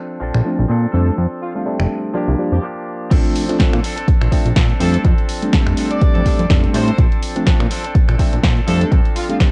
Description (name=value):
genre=filtered disco house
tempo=124 BPM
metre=4/4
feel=swing 56% on 16ths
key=F major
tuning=A4 = 442 Hz
part: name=direct-recorded clean electric guitar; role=riff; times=0.0-9.5 s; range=F3 to A4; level=-29 LUFS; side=equal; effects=sidechain pumping, low-pass filter, cassette tape
part: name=fat analog bass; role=bass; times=0.2-9.0 s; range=F1 to Bb2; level=-20 LUFS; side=equal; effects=sidechain pumping, low-pass filter
part: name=punchy analog drum machine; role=drums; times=0.3-9.5 s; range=crash cymbal, finger snaps, hi-hat, snare drum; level=-26 LUFS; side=equal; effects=cassette tape, sidechain pumping on hats, sidechain pumping on cymbals
part: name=barky tine electric piano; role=accompaniment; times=0.4-9.5 s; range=F3 to D4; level=-23 LUFS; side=equal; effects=overdrive, phaser, sidechain pumping, low-pass filter, cassette tape
part: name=bright horn section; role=melody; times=0.9-9.4 s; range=F4 to D5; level=-29 LUFS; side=equal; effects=sidechain pumping, low-pass filter, tape echo
part: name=electronic kick drum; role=drums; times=3.1-9.5 s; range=none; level=-17 LUFS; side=equal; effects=cassette tape
room=little or no reverb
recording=home recording on cassette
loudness=-16 LUFS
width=mono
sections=0.0-3.1 A section; 3.1-9.5 B section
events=filter sweep on drum 0.0-3.1; break 2.6-3.1; drop 3.1-9.5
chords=0.0 Bbmaj9; 0.9 F6; 2.1 C9sus4; 3.1 Bbmaj9; 4.8 F6; 7.0 Bbmaj9; 8.7 F6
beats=0.21 0.69 | 1.18 1.66 2.15 2.63 | 3.11 3.60 4.08 4.56 | 5.05 5.53 6.02 6.50 | 6.98 7.47 7.95 8.44 | 8.92 9.40